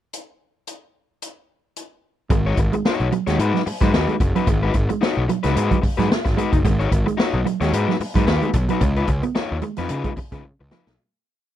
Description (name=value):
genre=funk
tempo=111 BPM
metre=4/4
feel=swing 56% on 16ths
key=G# dorian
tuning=A4 = 440 Hz
part: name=swinging big-band drum kit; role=drums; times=0.1-11.0 s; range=hi-hat, kick drum, snare drum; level=-22 LUFS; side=equal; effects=none
part: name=crunchy overdriven guitar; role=accompaniment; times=2.3-10.9 s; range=D#4 to C#5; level=-24 LUFS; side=left 7 dB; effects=none
part: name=mellow electric guitar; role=riff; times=2.3-10.8 s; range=E#3 to C#4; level=-25 LUFS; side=right 8 dB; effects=none
part: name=fuzz picked electric bass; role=bass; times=2.3-11.0 s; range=F#1 to C#3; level=-22 LUFS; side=equal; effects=overdrive
room=little or no reverb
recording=none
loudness=-18 LUFS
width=side -12 dB against mid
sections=0.1-2.3 pickup bar; 2.3-11.0 A section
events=fade-out 8.8-11.0; drum fill 10.4-11.0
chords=0.1 N.C.; 2.3 G#m7; 8.8 C#9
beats=| 0.13 0.67 1.22 1.76 | 2.30 2.84 3.39 3.93 | 4.47 5.01 5.55 6.10 | 6.64 7.18 7.72 8.27 | 8.81 9.35 9.89 10.44